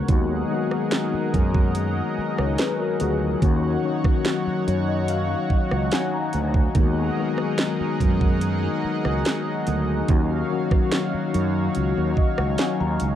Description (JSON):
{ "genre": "contemporary R&B", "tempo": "72 BPM", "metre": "4/4", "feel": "straight", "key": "unclear", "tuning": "A4 = 440 Hz", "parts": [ { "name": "mellow tine electric piano", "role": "accompaniment", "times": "0.0-13.2 s", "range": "Db3 to Bb5", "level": "-26 LUFS", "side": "left 7 dB", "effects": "ensemble chorus, cassette tape" }, { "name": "lush unison pad", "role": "sustained chords", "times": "0.0-13.2 s", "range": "Gb3 to Gb5", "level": "-27 LUFS", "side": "equal", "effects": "chorus, cassette tape" }, { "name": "fretless electric bass", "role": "bass", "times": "0.1-13.2 s", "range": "Db2 to Gb2", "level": "-24 LUFS", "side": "right 2 dB", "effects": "wide subtle chorus" }, { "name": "trap drum kit", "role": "drums", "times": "0.1-13.2 s", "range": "hi-hat, kick drum, rim click, snare drum", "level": "-22 LUFS", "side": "right 2 dB", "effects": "cassette tape" } ], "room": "digital ambience", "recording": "home recording on cassette", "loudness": "-20 LUFS", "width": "side -11 dB against mid", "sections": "0.1-13.2 A section", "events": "tine electric piano fill 4.3-6.8, 11.8-13.2", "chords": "0.1 Abm9/Eb; 3.4 Ebm7; 6.8 Abm9/Eb; 10.1 Ebm7", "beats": "| 0.09 0.92 1.75 2.59 | 3.42 4.25 5.09 5.92 | 6.75 7.59 8.42 9.25 | 10.09 10.92 11.75 12.59" }